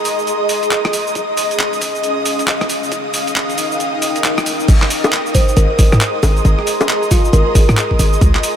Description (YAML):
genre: UK garage, two-step garage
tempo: 136 BPM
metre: 4/4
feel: swing 62% on 16ths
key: Ab major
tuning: A4 = 441 Hz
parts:
  - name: ethereal airy pad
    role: sustained chords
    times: 0.0-8.6 s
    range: Eb5 to Eb6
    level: -23 LUFS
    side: left 1 dB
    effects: ensemble chorus, built-in reverb, sidechain pumping
  - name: ethereal airy pad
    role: texture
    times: 0.0-8.6 s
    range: Db4 to C6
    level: -20 LUFS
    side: equal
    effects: ensemble chorus, built-in reverb, tremolo, sidechain pumping
  - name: boom bap sampler-style drum kit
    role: drums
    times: 0.1-8.5 s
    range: bongos, crash cymbal, handclaps, hi-hat, rim click, shaker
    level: -19 LUFS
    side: equal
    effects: overdrive
  - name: electronic kick drum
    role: drums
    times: 0.8-8.3 s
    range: none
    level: -14 LUFS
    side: equal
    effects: overdrive, high-pass filter on kick, high-pass filter on room
  - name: short 808-style bass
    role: bass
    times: 4.7-8.3 s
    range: Ab1 to Ab2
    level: -13 LUFS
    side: equal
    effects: tube saturation
  - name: kalimba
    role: melody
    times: 5.3-7.5 s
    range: F4 to C5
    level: -21 LUFS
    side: left 1 dB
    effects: ping-pong delay
room: moderate huge ambient reverb, RT60 7.3 s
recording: dreamy mix soaked in reverb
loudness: -12 LUFS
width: side -9 dB against mid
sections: 0.0-4.7 A section; 4.7-8.6 B section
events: build-up 0.0-4.7; drop 4.7-8.6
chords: 0.0 Ab; 4.7 Abmaj7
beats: 0.27 0.71 | 1.15 1.60 2.04 2.48 | 2.92 3.36 3.80 4.24 | 4.68 5.12 5.57 6.01 | 6.45 6.89 7.33 7.77 | 8.21